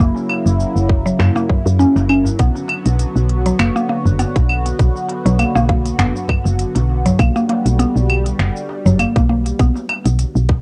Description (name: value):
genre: organic downtempo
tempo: 100 BPM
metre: 4/4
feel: swing 55% on 16ths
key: B harmonic minor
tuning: A4 = 439 Hz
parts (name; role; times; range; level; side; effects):
- warm analog pad; sustained chords; 0.0-10.6 s; C#3 to F#4; -26 LUFS; equal; chorus, sidechain pumping, cassette tape
- mallet-like synth pluck; arpeggios; 0.0-9.8 s; F#3 to C#4; -21 LUFS; equal; chorus, phaser, cassette tape, analog delay, plate reverb
- woody FM bass; bass; 0.0-10.6 s; F#1 to F#2; -18 LUFS; equal; none
- organic electronic drum kit; drums; 0.0-10.6 s; cabasa, claves, finger snaps, hi-hat; -26 LUFS; equal; overdrive, cassette tape
- darbuka; percussion; 0.2-10.6 s; none; -28 LUFS; equal; none
- electronic kick drum; drums; 0.9-10.6 s; none; -18 LUFS; equal; overdrive, cassette tape
room: moderate booth ambience, RT60 0.3 s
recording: home recording on cassette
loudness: -16 LUFS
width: mono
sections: 0.0-10.6 A section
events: none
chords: 0.0 F#7; 2.4 Bm; 7.2 Gmaj7